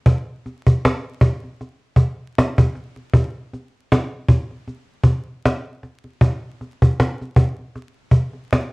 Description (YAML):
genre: hip hop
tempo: 78 BPM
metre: 4/4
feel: swing 57% on 16ths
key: none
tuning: none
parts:
  - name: cajon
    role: drums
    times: 0.1-8.7 s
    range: none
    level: -15 LUFS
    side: equal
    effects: none
room: moderate studio reverb, RT60 0.6 s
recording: worn, warbling old tape, cassette tape, vinyl crackle, warbly pitch drift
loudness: -17 LUFS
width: side -30 dB against mid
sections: 0.0-8.7 A section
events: none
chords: none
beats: | 0.05 0.82 1.59 2.36 | 3.13 3.90 4.67 5.44 | 6.21 6.97 7.74 8.51